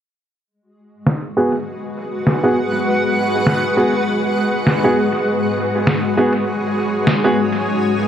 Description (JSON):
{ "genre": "ambient dub", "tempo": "100 BPM", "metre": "4/4", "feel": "swing 57% on 16ths", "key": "G# minor", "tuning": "A4 = 440 Hz", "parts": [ { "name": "granular cloud pad", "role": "sustained chords", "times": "1.3-8.1 s", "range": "G#3 to G#5", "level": "-18 LUFS", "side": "left 1 dB", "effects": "built-in reverb" }, { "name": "electronic snare drum", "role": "drums", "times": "1.1-7.2 s", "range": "none", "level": "-20 LUFS", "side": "equal", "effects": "low-pass filter on snare, low-pass filter on room, dub echo" }, { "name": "clear upright piano", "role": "stabs", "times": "1.4-7.3 s", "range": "B3 to G#4", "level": "-20 LUFS", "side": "right 1 dB", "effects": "low-pass filter, dub echo" } ], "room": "moderate huge ambient reverb, RT60 8.6 s", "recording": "none", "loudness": "-15 LUFS", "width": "side -9 dB against mid", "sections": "0.5-8.1 A section", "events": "filter sweep on drum 0.5-8.1; filter sweep on upright piano 0.5-8.1", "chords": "0.5 G#m7" }